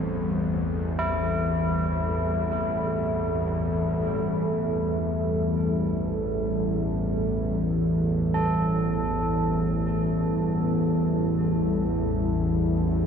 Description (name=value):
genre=dark ambient drone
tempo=free time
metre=none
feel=none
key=A minor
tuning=A4 = 439 Hz
part: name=deep dark ambient pad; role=sustained chords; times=0.0-13.1 s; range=G3 to C5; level=-28 LUFS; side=equal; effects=chorus, built-in reverb
part: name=tubular bells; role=arpeggios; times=0.0-13.1 s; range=C4 to A4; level=-32 LUFS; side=equal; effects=diffuse ambient delay
part: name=bowed-like drone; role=drone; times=0.0-13.1 s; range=A1 to E2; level=-25 LUFS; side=equal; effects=built-in reverb
room=wet huge ambient reverb, RT60 8.0 s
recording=cassette tape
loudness=-23 LUFS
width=side -7 dB against mid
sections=0.0-4.2 A section; 4.2-13.1 B section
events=filter sweep on synth drone 4.2-13.1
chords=0.0 Am7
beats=free time